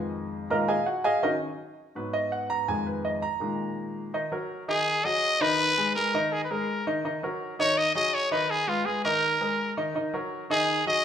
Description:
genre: latin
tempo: 165 BPM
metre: 4/4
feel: straight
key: Eb minor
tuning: A4 = 440 Hz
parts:
  - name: clear concert grand piano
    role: accompaniment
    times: 0.0-11.0 s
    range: F2 to Bb5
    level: -28 LUFS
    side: equal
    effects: none
  - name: growling trumpet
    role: melody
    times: 4.7-11.0 s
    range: F4 to Eb5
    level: -24 LUFS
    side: equal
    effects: none
room: wet large studio reverb, RT60 1.3 s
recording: minimal, uncompressed stereo recording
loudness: -24 LUFS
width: side -8 dB against mid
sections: 0.0-4.1 A section; 4.1-11.0 B section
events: grand piano solo 0.0-4.1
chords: 0.0 Fm7; 0.5 Bb7sus4; 1.2 Ebm7; 2.0 Abm7; 2.7 Fm7b5; 3.4 Bb7sus4; 4.1 Ebm; 4.9 Ab5; 5.6 Abmadd9/Eb; 6.3 Bb7sus4; 7.0 Ebm; 7.8 Ab5; 8.5 Abm69/Eb; 9.2 Bb7sus4; 10.0 Ebm

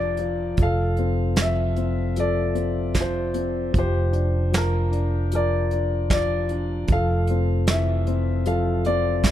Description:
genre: acoustic folk-pop ballad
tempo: 76 BPM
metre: 4/4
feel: straight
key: F major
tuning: A4 = 439 Hz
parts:
  - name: warm concert grand piano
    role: melody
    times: 0.0-9.3 s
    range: E3 to F5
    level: -24 LUFS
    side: left 2 dB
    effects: none
  - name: fretless electric bass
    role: bass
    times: 0.0-9.3 s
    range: F1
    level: -24 LUFS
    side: equal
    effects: none
  - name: soft brush drum kit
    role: drums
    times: 0.2-9.3 s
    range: hi-hat, kick drum, snare drum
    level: -23 LUFS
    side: right 2 dB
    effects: none
room: little or no reverb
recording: dark, warm production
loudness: -20 LUFS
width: side -12 dB against mid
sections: 0.0-9.3 A section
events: none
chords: 0.0 Bbadd9/F

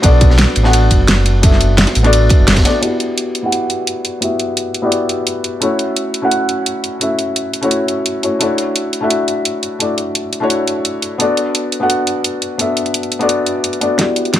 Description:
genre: liquid drum and bass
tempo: 172 BPM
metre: 4/4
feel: straight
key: E dorian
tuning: A4 = 440 Hz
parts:
  - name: felt-muted upright piano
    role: accompaniment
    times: 0.0-14.4 s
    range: A3 to F#5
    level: -16 LUFS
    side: left 1 dB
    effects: low-pass filter, tape echo
  - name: sub bass with octave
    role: bass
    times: 0.0-2.6 s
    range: F#1 to B1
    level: -12 LUFS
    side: equal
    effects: none
  - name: crunchy breakbeat drum kit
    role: drums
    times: 0.0-2.7 s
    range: ride cymbal, snare drum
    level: -23 LUFS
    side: equal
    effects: high-pass filter on cymbals, small room ambience, high-pass filter on snare, high-pass filter on room
  - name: electronic kick drum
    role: drums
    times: 0.0-2.6, 14.0-14.4 s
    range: none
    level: -12 LUFS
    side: equal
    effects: high-pass filter on kick, small room ambience
  - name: pop drum kit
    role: drums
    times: 0.0-14.4 s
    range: hi-hat, snare drum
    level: -17 LUFS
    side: right 1 dB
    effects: small room ambience
room: light reverb, small room ambience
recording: none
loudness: -13 LUFS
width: side -12 dB against mid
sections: 0.0-2.8 A section; 2.8-14.0 B section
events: drop 0.0-2.8; filter sweep on felt piano 2.8-14.0; drum fill 14.0-14.4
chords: 0.0 Bm7; 2.8 Em9; 5.6 F#m7; 8.4 Dmaj9; 11.2 Bm7

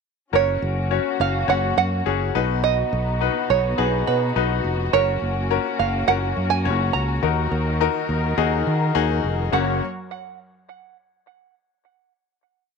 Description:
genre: pop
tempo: 104 BPM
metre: 4/4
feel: straight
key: F# major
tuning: A4 = 440 Hz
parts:
  - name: bright upright piano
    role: accompaniment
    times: 0.3-9.8 s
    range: F#2 to C#5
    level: -24 LUFS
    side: left 14 dB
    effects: none
  - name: muted studio string section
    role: sustained chords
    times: 0.3-9.8 s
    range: D#3 to C#5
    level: -28 LUFS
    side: left 2 dB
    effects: none
  - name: fingered electric bass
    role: bass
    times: 0.3-9.8 s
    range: E#1 to D#3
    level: -24 LUFS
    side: equal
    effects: none
  - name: open-back banjo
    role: melody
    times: 0.4-9.8 s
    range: B4 to A#5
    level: -23 LUFS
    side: right 14 dB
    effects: tape echo
room: light reverb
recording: 1960s-style stereo with parts hard left and right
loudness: -19 LUFS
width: side -5 dB against mid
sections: 0.3-9.5 chorus; 9.5-11.8 final chord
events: none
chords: 0.3 F#; 2.3 B; 4.9 F#; 7.2 D#m; 9.5 F#

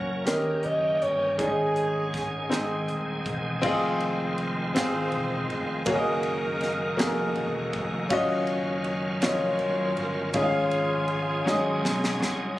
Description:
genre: slow gospel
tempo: 54 BPM (dotted quarters)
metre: 6/8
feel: straight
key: unclear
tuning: A4 = 440 Hz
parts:
  - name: bright grand piano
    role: accompaniment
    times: 0.0-12.6 s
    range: Ab2 to Gb5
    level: -27 LUFS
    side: left 1 dB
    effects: none
  - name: bright tonewheel organ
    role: sustained chords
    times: 0.0-12.6 s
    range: Eb3 to F5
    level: -34 LUFS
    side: right 1 dB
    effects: fast rotary speaker, overdrive, chorus vibrato
  - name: slap bass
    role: bass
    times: 0.0-12.5 s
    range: Eb1 to Eb2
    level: -33 LUFS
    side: equal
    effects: none
  - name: mellow alto saxophone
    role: melody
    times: 0.3-2.8 s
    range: Ab4 to Eb5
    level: -26 LUFS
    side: right 1 dB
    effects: none
  - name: crisp fusion drum kit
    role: drums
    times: 0.3-12.4 s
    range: crash cymbal, hi-hat, kick drum, ride cymbal, snare drum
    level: -32 LUFS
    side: equal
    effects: none
  - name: warm saxophone section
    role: melody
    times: 4.8-12.2 s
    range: Db4 to Db5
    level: -31 LUFS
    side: equal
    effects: none
room: little or no reverb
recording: recorded on a phone in the room, club reverb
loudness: -24 LUFS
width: side -16 dB against mid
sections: 0.0-3.6 A section; 3.6-12.6 B section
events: drum fill 11.5-12.6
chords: 0.3 Eb7; 1.4 Absus4; 2.5 Ab; 3.6 Fm7; 5.9 Gb69; 8.1 Ebm9/Gb; 10.3 Db/Ab; 11.5 Ab7sus4

